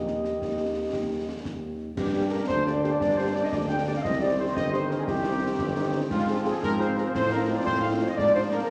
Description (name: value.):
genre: military-style march for wind band.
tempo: 116 BPM (dotted quarters).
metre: 6/8.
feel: straight.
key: unclear.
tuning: A4 = 440 Hz.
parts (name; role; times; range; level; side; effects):
mellow trumpet section; melody; 0.0-8.7 s; F4 to G5; -34 LUFS; equal; none.
mellow euphonium; second line; 0.0-1.7 s; G4; -39 LUFS; equal; none.
mellow French horn section; accompaniment; 0.0-8.6 s; Bb3 to Ab4; -36 LUFS; equal; none.
warm tuba; bass; 0.0-8.6 s; G1 to A2; -32 LUFS; equal; none.
concert snare drum, concert bass drum and clash cymbals; drums; 0.1-8.7 s; none; -36 LUFS; equal; none.
mellow flute section; second line; 2.0-8.7 s; F4 to G5; -32 LUFS; equal; none.
bright trombone section; sustained chords; 2.0-8.7 s; Bb2 to D4; -35 LUFS; equal; none.
room: wet scoring stage reverb, RT60 1.9 s.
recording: none.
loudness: -26 LUFS.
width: mono.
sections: 0.0-2.0 A section; 2.0-8.7 B section.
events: none.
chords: 0.0 Eb; 2.0 Gm; 4.0 Cm; 6.1 Fm/Ab; 7.1 F7/A; 8.2 Bb7/Ab.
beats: 0.42 | 0.94 1.45 | 1.97 2.49 | 3.00 3.52 | 4.04 4.56 | 5.07 5.59 | 6.11 6.62 | 7.14 7.66 | 8.18 8.69.